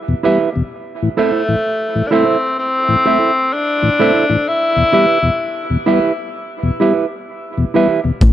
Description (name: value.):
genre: dub reggae.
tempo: 64 BPM.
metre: 4/4.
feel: swing 64% on 16ths.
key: unclear.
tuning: A4 = 441 Hz.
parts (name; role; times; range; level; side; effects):
mellow tonewheel organ; accompaniment; 0.1-8.1 s; E2 to E4; -18 LUFS; left 3 dB; chorus vibrato, slow rotary speaker.
mellow electric guitar; accompaniment; 0.2-8.1 s; E4 to E5; -18 LUFS; right 6 dB; dub echo.
clear tenor saxophone; melody; 1.2-5.9 s; A3 to E4; -16 LUFS; left 2 dB; dub echo.
deep dub fingered electric bass; bass; 8.2-8.3 s; A1; -9 LUFS; left 1 dB; none.
cloth-damped thuddy drum kit; drums; 8.2-8.3 s; hi-hat, kick drum; -13 LUFS; left 1 dB; none.
room: light reverb, studio reverb.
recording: dark, warm production.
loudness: -13 LUFS.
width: side -12 dB against mid.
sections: 0.0-8.3 A section.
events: none.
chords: 0.0 Em; 0.7 Am; 4.5 Em.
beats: | 0.71 1.65 2.59 3.53 | 4.46 5.40 6.34 7.28 | 8.21.